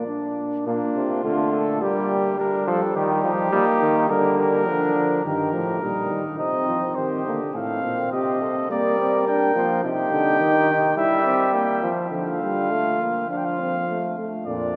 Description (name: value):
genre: classical, imitative canzona for brass ensemble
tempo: 104 BPM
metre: 4/4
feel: straight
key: Bb major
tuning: A4 = 440 Hz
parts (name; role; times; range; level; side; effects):
- mellow cornet; melody; 0.0-14.8 s; D4 to G5; -28 LUFS; equal; none
- warm flugelhorn; second line; 0.0-14.8 s; Bb3 to Bb4; -30 LUFS; equal; none
- warm trombone; accompaniment; 0.0-14.7 s; Bb2 to E4; -28 LUFS; equal; none
- clear bass trombone; bass; 0.0-14.8 s; F2 to G3; -27 LUFS; equal; none
room: wet cathedral reverb, RT60 5.2 s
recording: none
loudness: -22 LUFS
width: mono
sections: 0.7-5.2 A section; 5.2-14.5 B section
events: none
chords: 0.0 Bb; 1.8 Gm; 3.0 Eb; 4.1 Bb/D; 5.2 Eb/G; 6.4 Cm; 7.6 F/A; 8.7 Gm; 9.8 Cm; 11.0 Edim/G; 12.1 Bb/D; 13.3 F